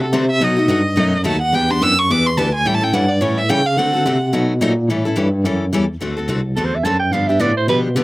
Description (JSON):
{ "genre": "acoustic string swing (jazz manouche)", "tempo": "215 BPM", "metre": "4/4", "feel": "swing 58% on 8ths", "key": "D mixolydian", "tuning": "A4 = 440 Hz", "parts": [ { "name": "warm violin", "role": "melody", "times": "0.0-4.3 s", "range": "A4 to E6", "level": "-18 LUFS", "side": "right 1 dB", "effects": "slapback echo" }, { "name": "picked steel-string acoustic guitar", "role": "accompaniment", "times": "0.0-8.0 s", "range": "B2 to A4", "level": "-20 LUFS", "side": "left 2 dB", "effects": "slapback echo" }, { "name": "overdriven tine electric piano", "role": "bass", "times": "0.0-8.0 s", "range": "C2 to D3", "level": "-18 LUFS", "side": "equal", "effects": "fast tremolo" }, { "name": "growling soprano saxophone", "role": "second line", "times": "6.6-7.8 s", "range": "A4 to A5", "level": "-18 LUFS", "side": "right 3 dB", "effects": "slapback echo" } ], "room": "little or no reverb", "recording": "recorded outdoors, with no room sound", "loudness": "-14 LUFS", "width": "side -19 dB against mid", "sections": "0.0-6.0 A section; 6.0-8.0 A section", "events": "violin solo 0.0-6.0; soprano saxophone solo 6.0-8.0", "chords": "0.4 B7; 1.5 Em7; 2.7 A7; 3.8 D7; 4.3 B7; 4.9 A7; 6.0 D7; 7.1 G7" }